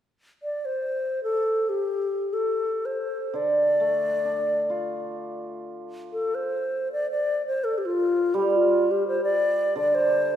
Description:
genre	chinese traditional, Chinese chamber ensemble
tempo	free time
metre	none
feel	none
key	D yu mode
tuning	A4 = 444 Hz
part	bright low xiao	melody	0.4-10.4 s	F4 to D5	-24 LUFS	left 1 dB	none
part	hammered dulcimer	accompaniment	3.3-10.4 s	D3 to F4	-25 LUFS	right 3 dB	none
room	wet concert hall reverb, RT60 2.4 s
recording	heard from further back in the room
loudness	-22 LUFS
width	side -10 dB against mid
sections	0.0-6.9 A section; 6.9-10.4 B section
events	none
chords	none

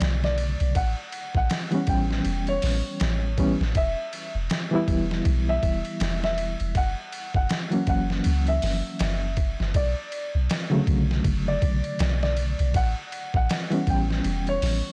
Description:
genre	trip hop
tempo	80 BPM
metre	4/4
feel	swing 59% on 16ths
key	B minor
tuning	A4 = 440 Hz
part	felt-muted upright piano	melody	0.0-14.9 s	C#5 to G5	-33 LUFS	equal	none
part	bright reed electric piano	accompaniment	0.0-14.9 s	C#3 to E4	-30 LUFS	equal	tremolo, low-pass filter
part	soft 808-style bass	bass	0.0-14.8 s	E1 to C#2	-28 LUFS	equal	tube saturation
part	trip hop sampler-style drum kit	drums	0.0-14.8 s	hi-hat, kick drum, ride cymbal, snare drum	-30 LUFS	equal	none
room	little or no reverb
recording	dry, gritty hardware recording, cassette tape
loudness	-25 LUFS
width	mono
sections	0.0-14.9 A section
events	filter sweep on reed electric piano 0.0-14.9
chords	0.0 Bm7; 0.8 A7; 3.8 Em; 6.8 F#7; 9.8 Bm7; 12.8 A7

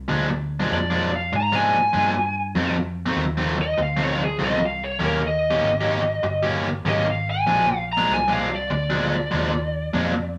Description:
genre	electric blues shuffle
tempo	98 BPM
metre	4/4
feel	swing 66% on 8ths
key	Bb mixolydian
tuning	A4 = 439 Hz
part	vintage muted fingered electric bass	bass	0.0-10.4 s	G1 to Ab2	-30 LUFS	equal	none
part	overdriven electric guitar	riff	0.1-10.2 s	F2 to G4	-26 LUFS	equal	none
part	lead guitar through a small cranked amp	melody	0.7-10.3 s	Ab4 to Bb5	-25 LUFS	equal	overdrive
room	moderate studio reverb, RT60 0.7 s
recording	none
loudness	-22 LUFS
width	mono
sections	0.0-10.4 A section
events	lead electric guitar solo 0.0-10.4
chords	0.0 Bb7; 2.6 F7; 5.0 Eb7; 7.5 Bb7

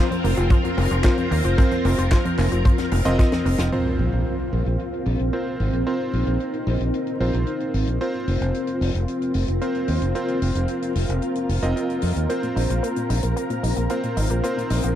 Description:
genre	italo disco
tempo	112 BPM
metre	4/4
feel	straight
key	unclear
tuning	A4 = 441 Hz
part	string machine, full ensemble	sustained chords	0.0-15.0 s	C4 to Bb4	-26 LUFS	left 1 dB	ensemble chorus
part	analog pluck	arpeggios	0.0-3.7, 12.3-14.9 s	F2 to Eb4	-28 LUFS	left 2 dB	chorus, tape echo
part	bright electric grand piano	stabs	0.0-15.0 s	C4 to Eb5	-28 LUFS	right 1 dB	low-pass filter, tape echo
part	tight funk drum kit	drums	0.1-14.9 s	handclaps, hi-hat, snare drum	-34 LUFS	left 3 dB	low-pass filter on hats, low-pass filter on snare, low-pass filter on room
part	fingered electric bass	bass	0.2-14.9 s	F1 to F2	-23 LUFS	equal	none
part	kick drum	drums	0.5-3.3 s	none	-18 LUFS	equal	none
part	impact	sound effects	3.7-5.9 s	none	-29 LUFS	equal	none
room	small room ambience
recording	dry, close 1970s-style studio recording, vinyl crackle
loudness	-20 LUFS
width	side -11 dB against mid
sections	0.0-3.7 A section; 3.7-15.0 B section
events	drum fill 3.2-3.7; band accent 3.6; impact 3.7-5.9; filter sweep on drum 3.7-15.0; filter sweep on string machine 3.7-15.0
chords	0.0 Fsus4; 3.7 Bbsus2; 8.0 Fsus4; 12.3 Bbsus2

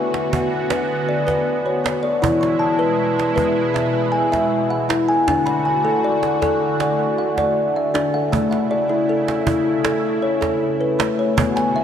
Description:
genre	world meditative, meditative tuned percussion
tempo	79 BPM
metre	4/4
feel	straight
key	unclear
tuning	A4 = 440 Hz
part	warm analog pad	sustained chords	0.0-11.8 s	B2 to F#4	-23 LUFS	right 3 dB	chorus
part	kalimba	arpeggios	0.0-11.8 s	D3 to C#6	-18 LUFS	left 2 dB	tape echo
part	cajon	percussion	0.1-11.8 s	none	-26 LUFS	right 4 dB	none
room	wet church reverb, RT60 3.0 s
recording	cassette tape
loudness	-17 LUFS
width	side -8 dB against mid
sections	0.0-11.8 A section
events	none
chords	0.0 Bm; 2.2 E; 5.3 D; 8.3 A

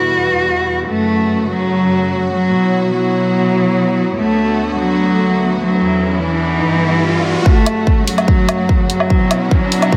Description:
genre	heavy wobble dubstep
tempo	146 BPM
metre	4/4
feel	half-time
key	F# phrygian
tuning	A4 = 440 Hz
part	rich cello	melody	0.0-10.0 s	E3 to F#4	-18 LUFS	equal	digital delay
part	clear symphonic string section	sustained chords	0.0-10.0 s	D2 to F#4	-23 LUFS	equal	vintage 12-bit sampler grit, sidechain pumping
part	warbly tape-like pad	texture	0.0-10.0 s	B3 to A5	-25 LUFS	equal	chorus, built-in reverb, sidechain pumping
part	riser	sound effects	5.5-10.0 s	none	-26 LUFS	equal	none
part	electronic kick drum	drums	7.5-10.0 s	none	-15 LUFS	equal	none
part	electronic hi-hat and woodblock	drums	7.7-9.9 s	none	-20 LUFS	equal	none
room	light reverb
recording	none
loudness	-15 LUFS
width	mono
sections	0.0-7.5 A section; 7.5-10.0 B section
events	riser 5.5-7.5, 7.5-10.0; build-up 7.5-10.0; filter sweep 7.5-10.0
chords	0.0 Em; 0.9 F#m; 2.5 Bsus4; 4.2 D6; 5.8 E5; 6.6 G; 7.5 F#m; 9.1 Bsus4

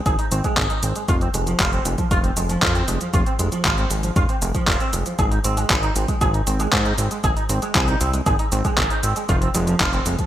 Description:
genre	italo disco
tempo	117 BPM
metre	4/4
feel	straight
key	Ab major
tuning	A4 = 442 Hz
part	electric guitar with an envelope filter	arpeggios	0.1-10.2 s	F3 to Ab4	-24 LUFS	right 3 dB	ensemble chorus, low-pass filter, digital delay
part	fat analog bass	bass	0.1-10.2 s	F1 to Ab2	-23 LUFS	equal	digital delay
part	detuned 8-bit digital drum machine	drums	0.1-10.3 s	cabasa, handclaps, hi-hat	-23 LUFS	equal	overdrive
part	electronic kick drum	drums	0.1-10.3 s	none	-23 LUFS	equal	none
room	light reverb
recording	bright 1980s-style digital production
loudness	-18 LUFS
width	side -12 dB against mid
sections	0.0-10.3 A section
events	none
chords	0.0 Ab; 1.1 Fm; 5.2 Ab; 9.3 Fm

